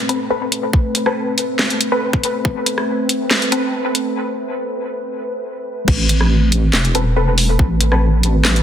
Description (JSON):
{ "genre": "deep dubstep", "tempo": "140 BPM", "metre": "4/4", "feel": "half-time", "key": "A minor", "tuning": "A4 = 440 Hz", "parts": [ { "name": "deep dark ambient pad", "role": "sustained chords", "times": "0.0-8.6 s", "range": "A3 to B4", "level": "-22 LUFS", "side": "equal", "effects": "chorus, built-in reverb" }, { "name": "filtered dub chord stab", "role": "stabs", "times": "0.1-3.6, 6.9-8.1 s", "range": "C4 to B4", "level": "-22 LUFS", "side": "left 2 dB", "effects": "phaser, dub echo" }, { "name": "garage drum kit", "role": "drums", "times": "0.1-8.6 s", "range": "crash cymbal, handclaps, hi-hat, rim click, snare drum", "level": "-18 LUFS", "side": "equal", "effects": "none" }, { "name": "electronic kick drum", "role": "drums", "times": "0.7-2.5, 5.9-7.7 s", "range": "none", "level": "-15 LUFS", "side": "equal", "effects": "none" }, { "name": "deep soft wobble bass", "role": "bass", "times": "5.9-8.6 s", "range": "E1 to A1", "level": "-15 LUFS", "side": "equal", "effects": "chorus" } ], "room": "moderate echo chamber reverb, RT60 1.5 s, digital ambience", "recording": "dense, heavily limited modern master, high-pass filter", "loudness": "-15 LUFS", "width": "side -10 dB against mid", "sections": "0.0-5.9 A section; 5.9-8.6 B section", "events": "build-up 0.0-5.9; break 4.2-5.9; drop 5.9-8.6", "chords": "0.0 Amadd9" }